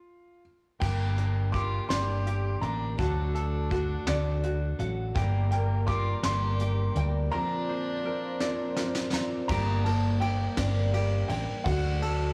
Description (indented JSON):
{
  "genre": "indie folk with a building arrangement",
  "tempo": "55 BPM (dotted quarters)",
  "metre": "6/8",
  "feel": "straight",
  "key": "unclear",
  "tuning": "A4 = 440 Hz",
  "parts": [
    { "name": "warm upright piano", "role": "melody", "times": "0.0-12.3 s", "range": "F4 to D6", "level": "-38 LUFS", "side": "equal", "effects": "none" },
    { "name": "warm fiddle", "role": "second line", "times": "0.8-9.1 s", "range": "Bb3 to G4", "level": "-42 LUFS", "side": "equal", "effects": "none" },
    { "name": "fingerpicked steel-string acoustic guitar", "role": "accompaniment", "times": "0.8-5.2 s", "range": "G2 to Bb4", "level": "-42 LUFS", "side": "equal", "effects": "none" },
    { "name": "picked steel-string acoustic guitar", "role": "accompaniment", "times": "0.8-12.3 s", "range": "G2 to Bb4", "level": "-39 LUFS", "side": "equal", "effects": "none" },
    { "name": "tenor ukulele", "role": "arpeggios", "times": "0.8-12.3 s", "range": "F#4 to Bb5", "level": "-39 LUFS", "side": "equal", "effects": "none" },
    { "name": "hollow-body short-scale fingered electric bass", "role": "bass", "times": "0.8-12.3 s", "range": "G1 to D2", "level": "-30 LUFS", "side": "equal", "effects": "transformer saturation" },
    { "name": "soft brush drum kit", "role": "drums", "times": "0.8-12.2 s", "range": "crash cymbal, hi-hat, kick drum, ride cymbal, snare drum", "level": "-36 LUFS", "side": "equal", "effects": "none" },
    { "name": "felt-muted upright piano", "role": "accompaniment", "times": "5.2-12.3 s", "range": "G1 to F5", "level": "-40 LUFS", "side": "equal", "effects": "none" },
    { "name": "chorused pulse-width pad", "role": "sustained chords", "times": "5.2-12.3 s", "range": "A3 to Bb5", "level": "-40 LUFS", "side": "equal", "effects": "none" }
  ],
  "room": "light reverb",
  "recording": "blown-out, overdriven recording, overdrive, small room ambience",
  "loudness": "-28 LUFS",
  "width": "mono",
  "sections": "0.8-9.5 A section; 9.5-12.3 B section",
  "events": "stop 0.0-0.8; break 7.3-9.5; drum fill 8.4-9.5",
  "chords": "0.0 N.C.; 0.8 Gm; 3.0 D; 5.2 Gm; 7.3 Bbadd9; 9.5 Gm; 11.7 D",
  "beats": "| 0.81 1.90 | 2.99 4.07 | 5.16 6.24 | 7.33 8.41 | 9.49 10.58 | 11.66"
}